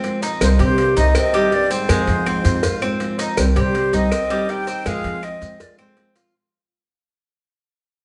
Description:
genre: latin, Cuban son and guajira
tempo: 162 BPM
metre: 4/4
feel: straight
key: C minor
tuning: A4 = 440 Hz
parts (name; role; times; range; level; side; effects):
- nylon-string guitar; accompaniment; 0.0-6.3 s; C3 to G4; -28 LUFS; equal; none
- Cuban tres; arpeggios; 0.0-6.3 s; G3 to G4; -25 LUFS; equal; none
- cowbell; percussion; 0.0-6.3 s; none; -29 LUFS; equal; none
- maracas; percussion; 0.0-6.3 s; none; -36 LUFS; equal; none
- breathy concert flute; melody; 0.4-6.1 s; C5 to G5; -25 LUFS; equal; none
- warm trombone; second line; 0.4-6.1 s; G2 to Eb4; -33 LUFS; equal; none
- upright bass; bass; 0.4-5.6 s; C2 to F3; -22 LUFS; equal; none
- claves; percussion; 0.4-6.0 s; none; -35 LUFS; equal; none
room: moderate large studio reverb, RT60 1.2 s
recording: band playing live in one room, nothing above 10.7 kHz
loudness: -18 LUFS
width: mono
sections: 0.0-3.4 A section; 3.4-6.3 B section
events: fade-out 3.4-6.3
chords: 0.4 Cm; 1.9 Fm; 3.4 Cm; 4.9 Fm

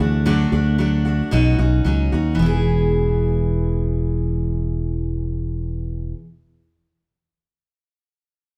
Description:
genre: folk rock and heartland rock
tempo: 113 BPM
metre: 4/4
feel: straight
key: E mixolydian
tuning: A4 = 442 Hz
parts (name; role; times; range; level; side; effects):
- picked steel-string acoustic guitar; accompaniment; 0.0-6.2 s; B2 to G#4; -24 LUFS; equal; none
- fingered electric bass; bass; 0.0-6.1 s; E1 to D#2; -22 LUFS; equal; none
room: moderate stone room reverb, RT60 1.2 s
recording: band playing live in one room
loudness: -20 LUFS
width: mono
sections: 0.0-2.4 A section; 2.4-6.6 B section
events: none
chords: 0.0 D; 1.3 Badd9; 2.4 E

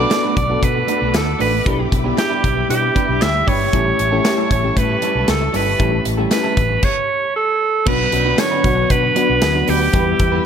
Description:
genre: 1980s-style pop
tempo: 116 BPM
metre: 4/4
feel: straight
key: unclear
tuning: A4 = 440 Hz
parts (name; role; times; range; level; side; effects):
- bright alto saxophone; melody; 0.0-10.5 s; G4 to E5; -19 LUFS; right 3 dB; none
- FM electric piano with auto-pan; accompaniment; 0.0-10.5 s; F#3 to A4; -23 LUFS; left 4 dB; none
- string machine, cellos; sustained chords; 0.0-10.5 s; D4 to E6; -25 LUFS; left 1 dB; ensemble chorus
- electric guitar at the edge of break-up; riff; 0.0-10.4 s; G3 to B4; -25 LUFS; right 3 dB; wide subtle chorus
- mellow fretless electric bass; bass; 0.0-10.4 s; G1 to B2; -22 LUFS; equal; none
- big rock drum kit; drums; 0.1-10.3 s; crash cymbal, hi-hat, kick drum, snare drum, tambourine; -20 LUFS; equal; none
- group handclap; percussion; 0.1-9.5 s; none; -35 LUFS; left 10 dB; none
room: light reverb, small room ambience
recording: none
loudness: -14 LUFS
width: side -8 dB against mid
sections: 0.0-7.9 A section; 7.9-10.5 B section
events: none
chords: 0.0 Bm7; 1.7 Em7/B; 3.7 A7; 7.9 Bm; 9.9 Em

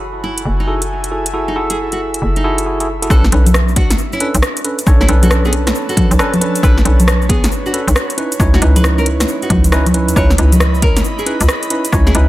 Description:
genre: UK garage, two-step garage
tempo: 136 BPM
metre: 4/4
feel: swing 64% on 16ths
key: B dorian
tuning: A4 = 440 Hz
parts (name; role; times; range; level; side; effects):
- hollow knocking FM bass; bass; 0.0-12.3 s; F#1 to E2; -14 LUFS; equal; sidechain pumping
- airy breathy pad; texture; 0.0-12.3 s; D4 to B5; -25 LUFS; equal; chorus, sidechain pumping
- nylon-string guitar; melody; 0.2-12.1 s; B3 to C#5; -24 LUFS; equal; tape echo
- house drum kit; drums; 0.4-12.3 s; congas, hi-hat, rim click, shaker, snare drum; -17 LUFS; equal; overdrive, dub echo
- bright tine electric piano; stabs; 0.7-12.3 s; C#4 to C#5; -20 LUFS; right 1 dB; tape echo
- electronic kick drum; drums; 3.1-12.0 s; none; -14 LUFS; equal; overdrive
room: little or no reverb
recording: echo-heavy mix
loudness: -11 LUFS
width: side -16 dB against mid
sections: 0.0-3.1 A section; 3.1-12.3 B section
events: drop 3.1-12.3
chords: 0.0 F#m9; 3.1 Bm9; 8.2 C#m9

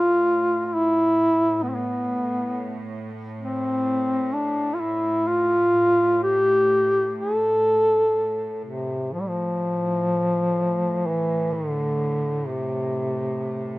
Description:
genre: caucasian folk, Caucasian lament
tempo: 59-67 BPM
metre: 3/4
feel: rubato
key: A minor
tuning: A4 = 440 Hz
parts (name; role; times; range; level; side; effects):
- mellow duduk; melody; 0.0-13.8 s; C3 to A4; -20 LUFS; equal; none
- clear symphonic cello section; drone; 0.0-13.8 s; A2; -34 LUFS; right 2 dB; none
room: light reverb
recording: rough home demo mix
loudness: -20 LUFS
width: side -19 dB against mid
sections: 0.0-9.1 A section; 9.1-13.8 B section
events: none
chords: none

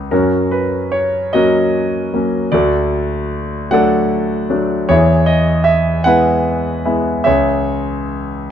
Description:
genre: classical, lyrical solo piano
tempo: 50 BPM (dotted quarters)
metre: 6/8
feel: rubato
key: unclear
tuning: A4 = 440 Hz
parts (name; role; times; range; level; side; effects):
- bright concert grand piano; solo; 0.0-8.5 s; C#2 to F#5; -13 LUFS; equal; none
room: moderate small room reverb, RT60 0.5 s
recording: dark, warm production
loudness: -13 LUFS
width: side -9 dB against mid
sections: 0.1-8.5 A section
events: none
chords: 0.1 F#; 2.5 D; 4.9 E; 7.3 C#m

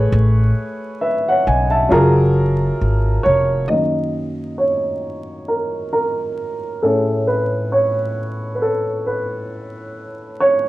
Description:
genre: lo-fi hip hop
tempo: 67 BPM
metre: 4/4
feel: swing 56% on 16ths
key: unclear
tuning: A4 = 439 Hz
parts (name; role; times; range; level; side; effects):
- dark upright piano; accompaniment; 0.0-10.7 s; F#2 to A5; -18 LUFS; equal; cassette tape, low-pass filter, plate reverb
- upright bass; bass; 0.0-3.6 s; E#1 to B1; -16 LUFS; equal; none
room: wet studio reverb, RT60 0.7 s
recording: vinyl crackle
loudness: -16 LUFS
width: side -16 dB against mid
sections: 0.0-3.7 A section; 3.7-10.7 B section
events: upright piano solo 3.7-10.7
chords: 0.0 Amaj9; 1.9 F#maj9; 3.7 F#6; 6.8 Amaj9

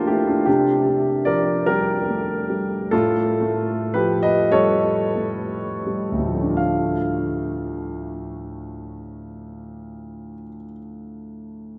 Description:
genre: classical, impressionist solo piano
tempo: 27-51 BPM (dotted quarters)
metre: 6/8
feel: rubato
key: D minor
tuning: A4 = 440 Hz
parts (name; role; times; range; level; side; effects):
- warm concert grand piano; solo; 0.0-11.8 s; D2 to F5; -23 LUFS; equal; none
room: wet cathedral reverb, RT60 5.6 s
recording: in a vast, echoing space, nothing above 10.5 kHz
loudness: -21 LUFS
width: mono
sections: 0.0-6.6 A section; 6.6-10.5 B section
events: slowing down 0.0-6.6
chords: 0.5 C9sus4; 2.9 Aaug7; 6.6 Dm

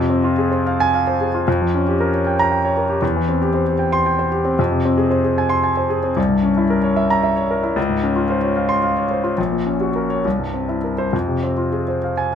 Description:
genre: classical, romantic character piece for solo piano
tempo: 66-79 BPM (dotted quarters)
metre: 6/8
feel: rubato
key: F minor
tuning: A4 = 443 Hz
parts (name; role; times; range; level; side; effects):
- clear grand piano; solo; 0.0-12.3 s; Bb1 to C6; -16 LUFS; left 1 dB; none
room: light reverb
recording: close, detailed microphones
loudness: -16 LUFS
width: side -8 dB against mid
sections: 0.0-12.3 A section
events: none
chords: 0.0 Fm; 1.5 Gm7b5/F; 3.0 C/E; 4.6 Fm; 6.2 C7b9; 7.8 Dbmaj7; 9.4 Gb/Bb; 10.2 C7; 11.1 Fm

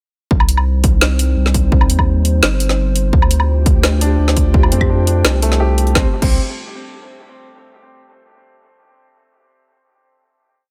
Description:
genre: half-time drum and bass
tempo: 170 BPM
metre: 4/4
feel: half-time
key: C dorian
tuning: A4 = 440 Hz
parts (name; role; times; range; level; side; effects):
- dark analog pad; sustained chords; 0.3-6.1 s; G3 to C5; -26 LUFS; equal; chorus, sidechain pumping
- saturated sub bass; bass; 0.3-6.4 s; G1 to F2; -17 LUFS; equal; none
- electronic kick drum; drums; 0.3-6.3 s; none; -17 LUFS; equal; none
- drum and bass drum kit; drums; 0.4-6.3 s; crash cymbal, hi-hat, snare drum, tambourine, woodblock; -20 LUFS; equal; overdrive
- flickering grainy texture; texture; 3.4-6.0 s; G4; -32 LUFS; equal; built-in reverb
- felt-muted upright piano; arpeggios; 4.0-6.4 s; A3 to G4; -25 LUFS; equal; dub echo
room: little or no reverb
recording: none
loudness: -14 LUFS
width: mono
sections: 0.3-6.0 drop; 6.0-7.4 final chord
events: drop 0.3-6.0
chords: 0.3 Cm; 3.1 Dm7; 6.0 Cm

